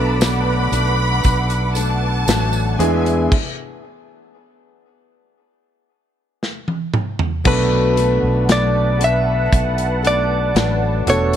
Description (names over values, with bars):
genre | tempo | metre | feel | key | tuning
pop ballad | 58 BPM | 4/4 | straight | unclear | A4 = 440 Hz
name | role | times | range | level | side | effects
rich studio violin section | second line | 0.0-3.3 s | G#5 to B5 | -24 LUFS | right 1 dB | none
warm concert grand piano | accompaniment | 0.0-11.4 s | B2 to A4 | -24 LUFS | right 3 dB | none
warm analog pad | sustained chords | 0.0-11.4 s | B4 to D6 | -26 LUFS | right 2 dB | chorus
fingerpicked steel-string acoustic guitar | arpeggios | 0.0-11.4 s | B2 to A4 | -26 LUFS | left 11 dB | tape echo
fretless electric bass | bass | 0.0-11.4 s | E1 to E2 | -19 LUFS | equal | none
modern studio drum kit | drums | 0.2-11.4 s | crash cymbal, hi-hat, kick drum, snare drum, toms | -20 LUFS | equal | none
tambourine | percussion | 0.2-2.8 s | none | -32 LUFS | right 12 dB | none
direct-recorded clean electric guitar | melody | 7.5-11.4 s | B4 to E5 | -19 LUFS | equal | none
room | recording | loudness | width
small room ambience | dark, warm production | -15 LUFS | side -10 dB against mid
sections
0.0-7.5 A section; 7.5-11.4 A section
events
stop 3.3-7.5; drum fill 6.4-7.5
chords
0.0 Bm7; 2.8 E7; 7.5 Bm7